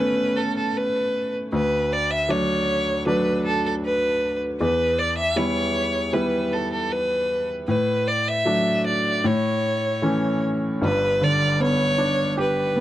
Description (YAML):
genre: pop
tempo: 78 BPM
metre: 4/4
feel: straight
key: D major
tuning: A4 = 440 Hz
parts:
  - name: rich violin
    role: melody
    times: 0.0-12.8 s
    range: A4 to E5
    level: -22 LUFS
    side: equal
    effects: none
  - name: clear baby grand piano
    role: accompaniment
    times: 0.0-12.8 s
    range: G1 to G4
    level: -23 LUFS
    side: equal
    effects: none
room: small room ambience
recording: dry, close 1970s-style studio recording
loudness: -20 LUFS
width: side -14 dB against mid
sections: 0.0-10.8 A section; 10.8-12.8 B section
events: none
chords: 0.0 Aadd9; 1.5 D; 4.6 Em; 7.7 D/A; 9.2 A; 10.8 G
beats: 0.76 | 1.53 2.30 3.07 3.84 | 4.61 5.37 6.14 6.91 | 7.69 8.46 9.24 10.03 | 10.82 11.61 12.38